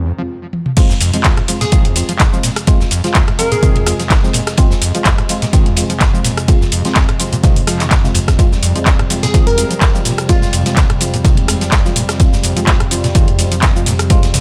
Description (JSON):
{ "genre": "acid house", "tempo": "126 BPM", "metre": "4/4", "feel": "swing 54% on 16ths", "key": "F minor", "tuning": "A4 = 442 Hz", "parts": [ { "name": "warm analog pad", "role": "sustained chords", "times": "0.0-14.4 s", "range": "F2 to C4", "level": "-24 LUFS", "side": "equal", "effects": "chorus, sidechain pumping" }, { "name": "overdriven acid bass", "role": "riff", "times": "0.0-14.4 s", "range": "Eb2 to F3", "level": "-22 LUFS", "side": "equal", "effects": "distortion, tube saturation, subtle chorus, sidechain pumping, tape echo" }, { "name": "deep mellow chord stab", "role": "stabs", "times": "0.2-14.2 s", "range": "Ab3 to F4", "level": "-25 LUFS", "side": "equal", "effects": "chorus, tape echo" }, { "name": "booming analog drum machine", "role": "drums", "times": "0.5-14.4 s", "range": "crash cymbal, handclaps, hi-hat, rim click, shaker, toms", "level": "-20 LUFS", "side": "equal", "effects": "small room ambience" }, { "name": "crunchy breakbeat drum kit", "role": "drums", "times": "0.8-14.4 s", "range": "ride cymbal, snare drum", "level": "-30 LUFS", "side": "equal", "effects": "sidechain pumping on cymbals, high-pass filter on cymbals, small room ambience, high-pass filter on snare, high-pass filter on room" }, { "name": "electronic kick drum", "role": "drums", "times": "0.8-14.2 s", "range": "none", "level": "-15 LUFS", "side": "equal", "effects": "small room ambience" }, { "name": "glassy wavetable pluck", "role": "melody", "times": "1.6-4.2, 9.2-10.5 s", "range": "F4 to Bb4", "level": "-23 LUFS", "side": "equal", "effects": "chorus, tape echo" } ], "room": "little or no reverb", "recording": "none", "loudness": "-13 LUFS", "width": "mono", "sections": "0.8-14.4 A section", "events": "stop 0.3-0.8; drum fill 0.5; drop 0.8-14.4", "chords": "0.0 Fm", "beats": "0.29 | 0.77 1.25 1.72 2.20 | 2.67 3.15 3.63 4.10 | 4.58 5.05 5.53 6.01 | 6.48 6.96 7.44 7.91 | 8.39 8.86 9.34 9.82 | 10.29 10.77 11.24 11.72 | 12.20 12.67 13.15 13.63 | 14.10" }